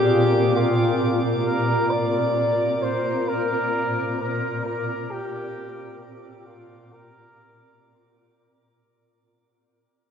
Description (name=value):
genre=ambient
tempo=66 BPM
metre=4/4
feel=straight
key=unclear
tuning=A4 = 440 Hz
part: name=warm flugelhorn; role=melody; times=0.0-8.3 s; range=F4 to D5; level=-24 LUFS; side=left 1 dB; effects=diffuse ambient delay
part: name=granular cloud pad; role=sustained chords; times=0.0-8.8 s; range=Bb2 to D5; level=-24 LUFS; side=equal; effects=built-in reverb
part: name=muted felt-like synth keys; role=arpeggios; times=0.0-8.8 s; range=none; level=barely audible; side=none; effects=none
part: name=drifting glass-harmonics texture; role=texture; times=0.0-8.8 s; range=D6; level=-37 LUFS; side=right 2 dB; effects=chorus, built-in reverb
room=wet huge ambient reverb, RT60 8.1 s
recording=nothing above 7.7 kHz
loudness=-20 LUFS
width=side -7 dB against mid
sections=0.0-8.8 A section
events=fade-out 0.0-8.8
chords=0.0 Gm7/Bb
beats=0.55 | 1.46 2.37 3.27 4.18 | 5.09 6.00 6.92 7.86